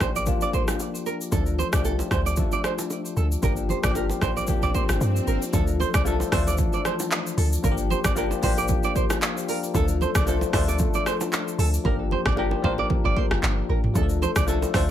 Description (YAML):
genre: afrobeats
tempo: 114 BPM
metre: 4/4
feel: swing 55% on 16ths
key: D minor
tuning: A4 = 440 Hz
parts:
  - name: bell-like tine electric piano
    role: accompaniment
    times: 0.0-14.9 s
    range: E3 to G5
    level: -28 LUFS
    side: left 5 dB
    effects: phaser
  - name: nylon-string guitar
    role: riff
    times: 0.0-14.8 s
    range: A4 to D5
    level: -29 LUFS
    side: right 7 dB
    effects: digital delay
  - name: deep log drum bass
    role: bass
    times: 0.0-14.9 s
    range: F1 to G2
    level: -25 LUFS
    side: equal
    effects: none
  - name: afro-pop drum kit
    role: drums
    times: 0.0-14.9 s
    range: handclaps, hi-hat, kick drum, rim click, shaker, toms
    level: -26 LUFS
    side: equal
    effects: none
  - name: bongos and congas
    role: percussion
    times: 0.0-14.9 s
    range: none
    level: -34 LUFS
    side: right 6 dB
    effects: none
  - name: swell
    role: sound effects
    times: 4.1-5.5 s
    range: none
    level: -35 LUFS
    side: right 1 dB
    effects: none
room: little or no reverb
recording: none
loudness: -21 LUFS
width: side -11 dB against mid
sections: 0.0-5.5 A section; 5.5-14.9 B section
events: swell 4.1-5.5; tine electric piano fill 8.7-9.7; hi-hats muted 11.9-14.0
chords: 0.0 Gm7; 1.3 Dm; 3.4 Gm7; 5.5 Dm; 7.6 Gm7; 9.7 Dm; 11.9 Gm7; 14.0 Dm